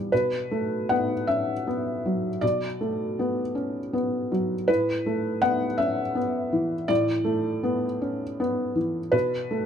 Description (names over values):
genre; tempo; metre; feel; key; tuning
neoclassical minimalist piano; 54 BPM (dotted quarters); 6/8; rubato; B minor; A4 = 443 Hz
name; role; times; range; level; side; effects
felt-muted upright piano; solo; 0.0-9.7 s; A2 to F#5; -23 LUFS; equal; none
room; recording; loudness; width
light reverb; none; -23 LUFS; side -8 dB against mid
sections
0.1-9.7 A section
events
none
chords
0.1 Bm7; 4.7 Asus2; 9.1 B7(no3)